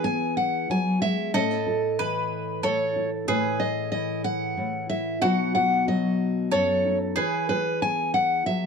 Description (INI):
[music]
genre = acoustic folk duo or small band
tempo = 93 BPM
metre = 3/4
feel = straight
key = unclear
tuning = A4 = 441 Hz
[part]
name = picked steel-string acoustic guitar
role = melody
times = 0.0-8.7 s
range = B4 to G#5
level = -25 LUFS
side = left 1 dB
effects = none
[part]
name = bowl-back mandolin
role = second line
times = 0.0-8.7 s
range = F#4 to B4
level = -31 LUFS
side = right 4 dB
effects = none
[part]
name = nylon-string guitar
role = accompaniment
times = 0.0-8.7 s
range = F#2 to A4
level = -26 LUFS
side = left 1 dB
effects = none
[sound]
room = wet booth ambience, RT60 0.2 s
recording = dark, warm production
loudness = -22 LUFS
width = side -5 dB against mid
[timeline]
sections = 0.0-8.7 A section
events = none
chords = 0.0 E; 1.3 A; 3.3 A5; 5.2 B; 7.2 E